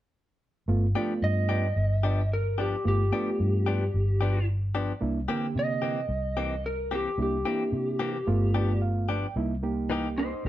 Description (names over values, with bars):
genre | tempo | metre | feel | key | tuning
blues | 111 BPM | 4/4 | straight | unclear | A4 = 440 Hz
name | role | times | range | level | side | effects
overdriven reed electric piano | accompaniment | 0.7-10.3 s | D3 to G5 | -31 LUFS | right 3 dB | none
vintage muted fingered electric bass | bass | 0.7-10.5 s | G1 to C3 | -27 LUFS | equal | none
direct-recorded clean electric guitar | stabs | 1.0-10.1 s | E3 to G4 | -32 LUFS | left 5 dB | none
electric slide guitar | melody | 1.2-10.5 s | D#4 to Eb5 | -30 LUFS | equal | none
room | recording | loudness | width
moderate stone room reverb, RT60 0.9 s | band playing live in one room | -25 LUFS | side -13 dB against mid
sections
0.7-9.4 A section; 9.4-10.5 B section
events
reed electric piano fill 8.3-9.4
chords
0.7 G7; 5.0 C7; 8.3 G7; 9.4 C7#9